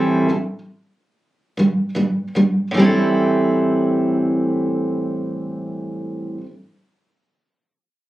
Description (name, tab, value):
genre	pop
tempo	75-84 BPM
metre	4/4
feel	straight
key	A minor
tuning	A4 = 439 Hz
part	fingerpicked steel-string acoustic guitar	accompaniment	0.0-6.5 s	A2 to A4	-17 LUFS	right 1 dB	none
room	wet booth ambience, RT60 0.3 s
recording	recorded on a phone in the room, club reverb, compression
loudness	-17 LUFS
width	side -15 dB against mid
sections	0.0-2.7 A section; 2.7-5.9 B section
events	slowing down 0.0-2.7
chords	0.0 A7(no3); 2.7 Am7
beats	0.47 1.21 1.97 | 2.75 3.54 4.34 5.13